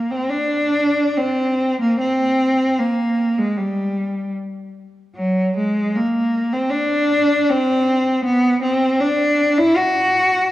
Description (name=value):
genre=classical, free, expressive piece for unaccompanied cello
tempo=68-80 BPM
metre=4/4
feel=rubato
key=unclear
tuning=A4 = 441 Hz
part: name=clear cello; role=solo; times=0.0-10.5 s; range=Gb3 to Gb4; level=-16 LUFS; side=equal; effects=none
room=moderate concert hall reverb, RT60 1.9 s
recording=worn, warbling old tape, cassette tape, warbly pitch drift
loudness=-16 LUFS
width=side -15 dB against mid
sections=0.0-10.5 A section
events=none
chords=none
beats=0.32 1.18 | 2.00 2.78 3.56 4.32 | 5.13 5.94 6.70 7.48 | 8.23 9.00 9.76